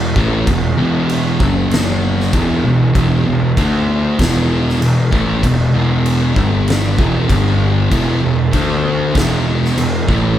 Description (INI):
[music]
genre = stoner and doom metal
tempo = 97 BPM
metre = 4/4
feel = straight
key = E minor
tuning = A4 = 444 Hz
[part]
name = thick fuzz guitar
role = riff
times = 0.0-10.4 s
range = E2 to D4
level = -19 LUFS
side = left 7 dB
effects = distortion
[part]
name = thick fuzz guitar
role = riff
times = 0.0-10.4 s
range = E2 to D4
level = -18 LUFS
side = right 5 dB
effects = distortion
[part]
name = fuzz picked electric bass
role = bass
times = 0.0-10.4 s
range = E1 to D2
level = -18 LUFS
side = equal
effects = overdrive
[part]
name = oversized low-tuned drum kit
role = drums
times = 0.2-10.2 s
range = crash cymbal, kick drum, snare drum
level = -19 LUFS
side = equal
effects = none
[sound]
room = light reverb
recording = band playing live in one room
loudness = -12 LUFS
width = side -11 dB against mid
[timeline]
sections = 0.0-10.4 A section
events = none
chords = 0.0 E5; 1.4 F#5; 2.3 E5; 3.6 D5; 4.2 E5; 6.4 G5; 7.0 E5; 7.3 G5; 7.9 E5; 8.5 D5; 9.2 E5